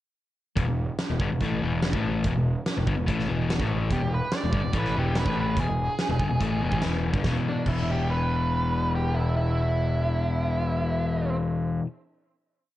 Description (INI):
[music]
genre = classic rock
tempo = 144 BPM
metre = 4/4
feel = straight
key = unclear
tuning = A4 = 440 Hz
[part]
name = crunchy overdriven guitar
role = riff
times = 0.6-11.9 s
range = E2 to A3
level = -26 LUFS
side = left 2 dB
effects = none
[part]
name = fuzz picked electric bass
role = bass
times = 0.6-11.8 s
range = E1 to A1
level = -30 LUFS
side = right 1 dB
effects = overdrive
[part]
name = huge arena drum kit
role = drums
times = 0.6-7.8 s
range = crash cymbal, hi-hat, kick drum, snare drum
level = -29 LUFS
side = right 1 dB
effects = vintage 12-bit sampler grit
[part]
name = octave-fuzz lead guitar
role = second line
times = 3.9-11.4 s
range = D4 to D5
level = -30 LUFS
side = right 2 dB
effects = distortion, analog delay
[sound]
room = moderate spring reverb, RT60 1.2 s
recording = cassette tape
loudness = -23 LUFS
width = side -14 dB against mid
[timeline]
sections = 0.6-7.3 verse; 7.3-10.6 final chord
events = none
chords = 0.6 E5